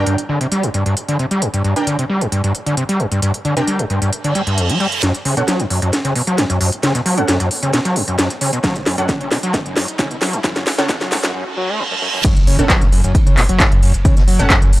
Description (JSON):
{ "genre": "driving peak-time techno", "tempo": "133 BPM", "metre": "4/4", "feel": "straight", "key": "F# phrygian", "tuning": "A4 = 440 Hz", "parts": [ { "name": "screaming distorted acid line", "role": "riff", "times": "0.0-14.7 s", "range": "E2 to A3", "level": "-18 LUFS", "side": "equal", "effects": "distortion, analog chorus, sidechain pumping, analog delay" }, { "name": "rave stab", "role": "stabs", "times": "0.0-14.6 s", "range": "C#4 to G5", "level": "-24 LUFS", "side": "right 2 dB", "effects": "chorus, built-in reverb, cassette tape, sidechain pumping, analog delay" }, { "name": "techno drum kit", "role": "drums", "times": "0.1-14.8 s", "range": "crash cymbal, handclaps, hi-hat, snare drum", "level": "-19 LUFS", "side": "equal", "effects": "overdrive, sidechain pumping on hats, high-pass filter on hats, high-pass filter on snare, sidechain pumping on cymbals, high-pass filter on cymbals" }, { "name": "reverse cymbal, riser and impact", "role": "sound effects", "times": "4.3-14.1 s", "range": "none", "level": "-25 LUFS", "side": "right 2 dB", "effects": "none" }, { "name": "electronic kick drum", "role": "drums", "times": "8.6-14.6 s", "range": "none", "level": "-14 LUFS", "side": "equal", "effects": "overdrive" }, { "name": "jazz brush drum kit", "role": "drums", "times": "12.2-14.8 s", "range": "ride cymbal, snare drum", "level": "-34 LUFS", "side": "right 2 dB", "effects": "none" }, { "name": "saturated sub bass", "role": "bass", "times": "12.4-14.8 s", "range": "F#1", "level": "-17 LUFS", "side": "equal", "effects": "sidechain pumping, low-pass filter" } ], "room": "little or no reverb", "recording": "dry, gritty hardware recording, high-pass filter", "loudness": "-14 LUFS", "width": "side -16 dB against mid", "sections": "0.0-5.0 A section; 5.0-12.2 B section; 12.2-14.8 C section", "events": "reverse cymbal 4.3-5.0, 11.3-12.2; build-up 5.0-12.2; drum fill 5.0-11.3; filter sweep on acid bass 5.0-12.2; filter sweep 5.0-12.2; break 11.3-12.2; drop 12.2-14.8; impact 12.2-14.1", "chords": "0.0 Gm; 5.0 F#m" }